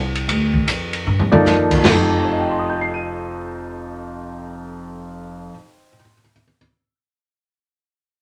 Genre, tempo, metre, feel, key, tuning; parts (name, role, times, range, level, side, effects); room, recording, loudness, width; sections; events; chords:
modal jazz; 154 BPM; 4/4; swing 65% on 8ths; F mixolydian; A4 = 439 Hz
upright bass; bass; 0.0-5.5 s; F1 to G2; -27 LUFS; equal
open jazz drum kit; drums; 0.2-2.0 s; crash cymbal, hi-hat, kick drum, ride cymbal, snare drum, splash cymbal, toms; -21 LUFS; equal
warm concert grand piano; accompaniment; 1.3-6.6 s; F2 to Eb7; -23 LUFS; equal
moderate studio ambience, RT60 0.5 s; -18 LUFS; mono
0.0-1.8 A section; 1.8-5.0 B section
drum fill 1.1-1.5
0.0 Gm; 1.8 F7